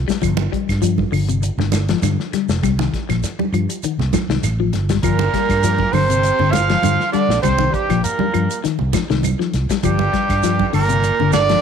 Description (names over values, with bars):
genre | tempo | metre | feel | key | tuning
afrobeat | 100 BPM | 4/4 | swing 54% on 16ths | G minor | A4 = 440 Hz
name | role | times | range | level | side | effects
fingered electric bass | bass | 0.0-11.5 s | F1 to G2 | -20 LUFS | right 1 dB | none
clean electric guitar | arpeggios | 0.1-11.6 s | C3 to G3 | -22 LUFS | left 12 dB | phaser, tape echo
warm soul drum kit | drums | 0.1-11.6 s | hi-hat, kick drum, snare drum | -25 LUFS | left 4 dB | none
shekere | percussion | 0.1-11.6 s | none | -28 LUFS | right 6 dB | none
claves | percussion | 0.2-11.5 s | none | -33 LUFS | right 16 dB | none
congas | percussion | 0.2-11.5 s | none | -26 LUFS | right 13 dB | none
clear trumpet | melody | 5.0-11.6 s | G4 to F5 | -19 LUFS | right 1 dB | none
mellow tenor saxophone | second line | 5.0-11.6 s | G3 to F4 | -24 LUFS | right 12 dB | none
raspy baritone saxophone | second line | 5.0-11.6 s | G2 to F3 | -28 LUFS | right 13 dB | none
room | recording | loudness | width
light reverb, small room reverb | 1960s-style stereo with parts hard left and right | -15 LUFS | side -7 dB against mid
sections
0.0-11.6 A section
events
drum fill 4.1-5.0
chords
0.2 G5; 2.6 Cm; 5.0 Gm7; 7.4 Cm7; 9.8 Gm7